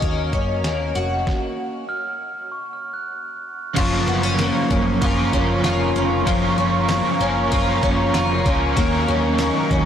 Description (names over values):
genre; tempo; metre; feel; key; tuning
dream pop; 96 BPM; 4/4; straight; F# major; A4 = 441 Hz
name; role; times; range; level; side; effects
warbly tape-like pad; sustained chords; 0.0-9.9 s; A#4 to C#6; -26 LUFS; right 2 dB; chorus, built-in reverb, phaser
picked twelve-string acoustic guitar; arpeggios; 0.0-9.9 s; E#3 to F#4; -22 LUFS; left 3 dB; lush chorus, tape echo
hollow-body short-scale picked electric bass; bass; 0.0-9.9 s; E#1 to F#2; -24 LUFS; equal; none
detuned 8-bit digital drum machine; drums; 0.0-9.9 s; crash cymbal, hi-hat, kick drum, ride cymbal, snare drum, tambourine; -25 LUFS; equal; overdrive
glockenspiel with rubber mallets; texture; 1.9-9.9 s; A#5 to F#6; -31 LUFS; left 1 dB; tape echo
crunchy overdriven guitar; accompaniment; 3.7-9.9 s; F#2 to A#4; -23 LUFS; right 3 dB; tremolo, analog chorus
room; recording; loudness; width
light reverb, digital ambience; blown-out, overdriven recording, overdrive; -18 LUFS; side -9 dB against mid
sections
0.0-3.8 A section; 3.8-9.9 B section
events
stop 1.3-3.8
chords
0.0 D#m7; 1.3 F#5; 3.8 F#maj7; 8.8 D#m7